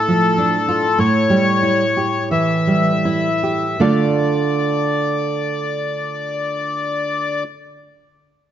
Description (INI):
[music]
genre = romantic duo for bandoneon and classical guitar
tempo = 38-52 BPM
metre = 4/4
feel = rubato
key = D minor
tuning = A4 = 439 Hz
[part]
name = bandoneon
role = melody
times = 0.0-7.4 s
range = A4 to E5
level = -19 LUFS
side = left 4 dB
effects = none
[part]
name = nylon-string guitar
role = accompaniment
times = 0.0-7.4 s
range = A2 to F5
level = -18 LUFS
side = right 3 dB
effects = none
[sound]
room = moderate recital hall reverb, RT60 1.6 s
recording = nothing above 7.7 kHz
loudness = -16 LUFS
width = side -10 dB against mid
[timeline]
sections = 0.0-3.8 A section; 3.8-8.5 B section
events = slowing down 0.0-3.8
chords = 0.0 Dm/A; 1.0 A7; 3.8 Dm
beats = 0.98 2.31 | 3.81 5.35 6.84